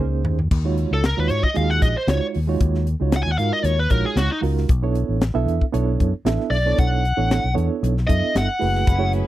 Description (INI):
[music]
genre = electric jazz fusion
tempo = 115 BPM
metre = 4/4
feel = straight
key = unclear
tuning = A4 = 440 Hz
[part]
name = reed electric piano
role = accompaniment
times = 0.0-9.3 s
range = Ab3 to E5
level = -25 LUFS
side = right 9 dB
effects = fast tremolo
[part]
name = fingered electric bass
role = bass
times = 0.0-9.2 s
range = Gb1 to Ab2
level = -21 LUFS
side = left 1 dB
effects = none
[part]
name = crisp fusion drum kit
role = drums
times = 0.2-9.3 s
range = crash cymbal, hi-hat, kick drum, snare drum, toms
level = -20 LUFS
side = left 1 dB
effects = none
[part]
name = bluesy overdriven lead guitar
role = melody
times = 0.9-9.1 s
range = Eb4 to Ab5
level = -23 LUFS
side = left 1 dB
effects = distortion, slapback echo
[part]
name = bright symphonic string section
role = sustained chords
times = 8.9-9.3 s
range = Gb3 to Cb5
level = -31 LUFS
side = left 2 dB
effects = none
[sound]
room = little or no reverb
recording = dry, close 1970s-style studio recording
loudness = -18 LUFS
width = side -14 dB against mid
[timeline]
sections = 0.5-9.3 A section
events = drum fill 0.0-0.5; lead electric guitar solo 0.5-9.3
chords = 0.0 Bbm11; 0.5 Ebm11; 4.7 Bm11; 8.6 Gbm11